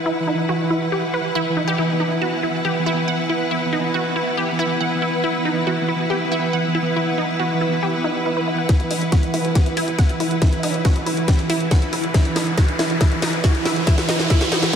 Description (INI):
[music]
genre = psychedelic trance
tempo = 139 BPM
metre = 4/4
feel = straight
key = unclear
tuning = A4 = 440 Hz
[part]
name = pulsing gated texture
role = sustained chords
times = 0.0-14.8 s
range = E3 to E4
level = -23 LUFS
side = right 2 dB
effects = chorus, built-in reverb, sidechain pumping
[part]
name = clear symphonic string section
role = texture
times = 0.0-14.8 s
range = E4 to F#5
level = -24 LUFS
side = equal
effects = sidechain pumping
[part]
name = wide unison pluck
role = riff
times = 0.1-14.8 s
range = D#4 to F#5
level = -24 LUFS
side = equal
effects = auto-pan, sidechain pumping, tape echo
[part]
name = electronic kick drum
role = drums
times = 8.7-14.8 s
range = none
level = -16 LUFS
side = left 1 dB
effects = small room reverb
[part]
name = garage drum kit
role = drums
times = 8.7-14.8 s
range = hi-hat, snare drum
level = -25 LUFS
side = left 1 dB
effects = small room reverb
[part]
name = riser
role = sound effects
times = 10.8-14.8 s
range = none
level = -29 LUFS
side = equal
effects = none
[part]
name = tight sequencer bass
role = bass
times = 8.8-14.7 s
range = E1 to G1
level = -38 LUFS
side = equal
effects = none
[part]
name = formant-sweep wobble bass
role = second line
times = 9.3-10.7 s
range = B3 to E4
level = -33 LUFS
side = equal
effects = none
[sound]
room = moderate lush hall reverb, RT60 1.7 s, digital ambience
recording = dreamy mix soaked in reverb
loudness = -17 LUFS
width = side -8 dB against mid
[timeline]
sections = 0.0-8.7 A section; 8.7-14.8 B section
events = build-up 8.7-14.8; drum fill 8.7-14.8; riser 10.8-14.8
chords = 0.0 E5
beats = | 0.06 0.49 0.92 1.35 | 1.78 2.22 2.65 3.08 | 3.51 3.94 4.37 4.81 | 5.24 5.67 6.10 6.53 | 6.96 7.39 7.83 8.26 | 8.69 9.12 9.55 9.98 | 10.42 10.85 11.28 11.71 | 12.14 12.57 13.01 13.44 | 13.87 14.30 14.73